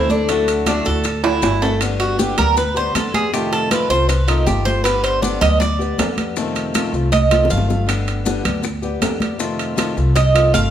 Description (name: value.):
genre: latin, Cuban son and guajira.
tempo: 158 BPM.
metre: 4/4.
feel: straight.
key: G major.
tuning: A4 = 440 Hz.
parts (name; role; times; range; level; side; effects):
Cuban tres; melody; 0.0-1.4 s; C5 to D5; -25 LUFS; right 3 dB; none.
nylon-string guitar; second line; 0.0-1.4 s; A4; -22 LUFS; left 6 dB; none.
fingerpicked swing-style acoustic guitar; accompaniment; 0.0-10.7 s; C3 to G4; -24 LUFS; left 4 dB; none.
Cuban tres; arpeggios; 0.0-7.9, 10.2-10.7 s; A3 to F5; -19 LUFS; right 3 dB; none.
upright bass; bass; 0.0-10.7 s; G1 to F2; -20 LUFS; equal; none.
congas; percussion; 0.1-10.7 s; none; -26 LUFS; equal; none.
maracas; percussion; 0.1-10.7 s; none; -32 LUFS; left 5 dB; none.
bongos; percussion; 0.3-10.7 s; none; -29 LUFS; left 6 dB; none.
timbales; percussion; 0.3-10.5 s; none; -24 LUFS; right 4 dB; none.
room: wet large studio reverb, RT60 1.2 s.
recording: band playing live in one room.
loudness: -15 LUFS.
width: side -10 dB against mid.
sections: 0.0-1.8 A section; 1.8-10.7 B section.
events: drum fill 1.2-1.8, 7.1-7.9; Cuban tres solo 1.8-10.7.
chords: 0.3 Dadd9; 1.8 G; 3.3 F7; 4.8 G; 6.4 F7; 7.9 G; 9.4 F7.